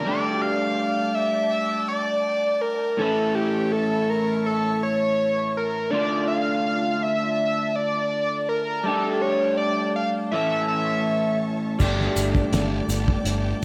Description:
psychedelic rock; 82 BPM; 4/4; straight; A4 = 437 Hz
overdriven synth lead; melody; 0.0-11.4 s; G4 to F5; -26 LUFS; equal; distortion, slapback echo
warm studio string section; sustained chords; 0.0-13.6 s; D4 to D6; -39 LUFS; equal
electric guitar through a small old amp; riff; 0.0-13.6 s; A2 to A4; -28 LUFS; equal; flanger
fuzz picked electric bass; bass; 11.8-13.5 s; G1; -27 LUFS; equal; overdrive
cloth-damped thuddy drum kit; drums; 11.8-13.4 s; crash cymbal, hi-hat, kick drum, snare drum; -27 LUFS; equal
egg shaker; percussion; 11.8-13.4 s; -41 LUFS; equal
moderate spring reverb, RT60 1.7 s, small room ambience; -23 LUFS; mono
0.0-13.6 A section
0.0 Gsus2; 3.0 A; 5.9 Dm; 8.9 Gsus2; 10.3 A; 11.8 Gsus2
| 0.05 0.78 1.51 2.25 | 2.98 3.72 4.45 5.18 | 5.92 6.65 7.39 8.12 | 8.85 9.59 10.32 11.06 | 11.79 12.53 13.26

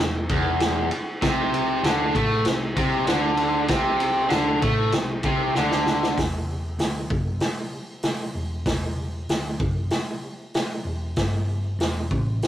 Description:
garage rock duo or trio; 96 BPM; 4/4; straight; E minor; A4 = 440 Hz
raw garage guitar; riff; 0.0-6.2 s; E2 to A3; -22 LUFS; equal; overdrive, spring reverb
hollow-body short-scale picked electric bass; bass; 0.0-12.4 s; E1 to A2; -28 LUFS; equal
vintage drum kit; drums; 0.3-12.5 s; hi-hat, kick drum, ride cymbal, snare drum; -25 LUFS; equal
moderate studio ambience, RT60 0.5 s; rough rehearsal-room recording, warm saturation; -21 LUFS; side -11 dB against mid
0.0-6.2 A section; 6.2-12.5 B section
drum fill 5.6-6.2
0.0 N.C.; 1.2 Amadd11/C; 6.2 Esus2; 11.2 Emadd11
0.61 | 1.22 1.84 2.46 3.08 | 3.70 4.32 4.94 5.56 | 6.18 6.80 7.42 8.04 | 8.67 9.29 9.91 10.54 | 11.16 11.79 12.41

